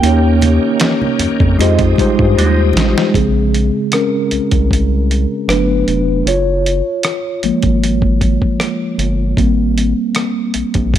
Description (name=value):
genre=R&B, neo-soul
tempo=77 BPM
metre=4/4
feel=swing 54% on 16ths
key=unclear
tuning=A4 = 440 Hz
part: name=electric guitar through a small old amp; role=melody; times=0.0-1.9 s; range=G5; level=-24 LUFS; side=right 6 dB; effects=tape echo
part: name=mellow tine electric piano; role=accompaniment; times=0.0-11.0 s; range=Db3 to Db5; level=-15 LUFS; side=equal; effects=medium stereo tremolo
part: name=bright tonewheel organ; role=sustained chords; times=0.0-3.1 s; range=Eb3 to G4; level=-24 LUFS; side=equal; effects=slow rotary speaker, chorus vibrato
part: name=round analog bass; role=bass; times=0.0-11.0 s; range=F1 to G2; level=-15 LUFS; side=equal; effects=none
part: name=dusty soul sampler-style drum kit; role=drums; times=0.0-11.0 s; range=hi-hat, kick drum, rim click, snare drum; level=-17 LUFS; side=equal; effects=overdrive
part: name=congas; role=percussion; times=0.0-2.9 s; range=none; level=-26 LUFS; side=right 2 dB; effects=none
part: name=electric guitar through a small old amp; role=second line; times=1.6-2.6 s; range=Ab3 to G4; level=-22 LUFS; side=right 7 dB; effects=wah
room=light reverb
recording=none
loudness=-12 LUFS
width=side -11 dB against mid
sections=0.0-3.1 A section; 3.1-11.0 B section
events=drum fill 2.4-3.1; tine electric piano solo 3.1-11.0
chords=0.0 Eb7; 1.6 Fm9; 3.1 Bbm9; 5.5 Gmaj9; 6.3 Gbmaj9; 9.4 Abmaj9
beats=| 0.03 0.81 1.58 2.36 | 3.14 3.92 4.70 5.48 | 6.26 7.04 7.82 8.60 | 9.38 10.16 10.94